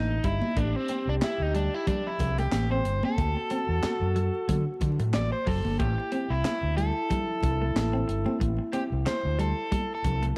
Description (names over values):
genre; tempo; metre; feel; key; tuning
funk; 92 BPM; 4/4; swing 56% on 16ths; A dorian; A4 = 443 Hz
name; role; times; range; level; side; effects
breathy trombone; second line; 0.0-10.4 s; D4 to G4; -37 LUFS; equal; none
overdriven electric guitar; accompaniment; 0.0-10.2 s; C4 to D5; -34 LUFS; equal; spring reverb
overdriven fingered electric bass; bass; 0.0-10.3 s; F#1 to D3; -30 LUFS; equal; none
semi-hollow electric guitar; riff; 0.2-10.3 s; F#3 to C4; -38 LUFS; equal; spring reverb
tight funk drum kit; drums; 0.2-10.4 s; handclaps, hi-hat, kick drum, snare drum; -33 LUFS; equal; none
congas; percussion; 0.4-10.2 s; none; -38 LUFS; equal; none
room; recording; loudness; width
little or no reverb; dry, close 1970s-style studio recording, vinyl crackle; -28 LUFS; mono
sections
0.0-10.4 A section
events
overdriven electric guitar solo 0.0-10.4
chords
0.0 Am7; 3.2 D; 5.8 Am7